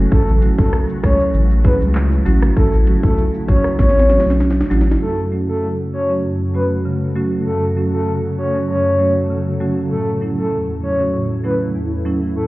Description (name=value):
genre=dancehall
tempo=98 BPM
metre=4/4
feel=straight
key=F# minor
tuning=A4 = 441 Hz
part: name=granular cloud pad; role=sustained chords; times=0.0-12.5 s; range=C#3 to A4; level=-27 LUFS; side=equal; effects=built-in reverb, sidechain pumping
part: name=saturated sub bass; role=bass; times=0.0-5.0 s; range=A1 to C#2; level=-15 LUFS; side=equal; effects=none
part: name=breathy flute-like synth lead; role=melody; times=0.1-12.5 s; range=A4 to C#5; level=-20 LUFS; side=left 1 dB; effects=chorus, ping-pong delay
part: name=island pop drum kit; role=drums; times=0.1-5.1 s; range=handclaps, hi-hat, kick drum, rim click, shaker, snare drum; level=-17 LUFS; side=equal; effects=none
part: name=marimba with medium mallets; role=accompaniment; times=0.4-12.5 s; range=E2 to A4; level=-20 LUFS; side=right 1 dB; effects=none
room=light reverb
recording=heard muffled through a wall, stone room reverb, EQ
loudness=-14 LUFS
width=side -19 dB against mid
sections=0.0-5.0 A section; 5.0-12.5 B section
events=drum fill 3.8-5.0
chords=0.1 A6; 5.0 F#m; 9.9 A6